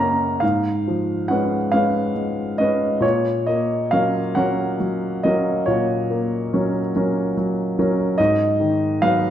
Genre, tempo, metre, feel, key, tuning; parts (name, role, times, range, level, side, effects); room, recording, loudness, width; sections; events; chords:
classical, romantic nocturne for solo piano; 43-49 BPM (dotted quarters); 12/8; rubato; F# major; A4 = 441 Hz
warm concert grand piano; solo; 0.0-9.3 s; F#2 to A#5; -18 LUFS; equal
wet recital hall reverb, RT60 1.7 s; dark, warm production; -18 LUFS; side -10 dB against mid
0.0-9.3 A section
0.4 C#7/G#; 3.0 F#/A#; 8.2 G#m7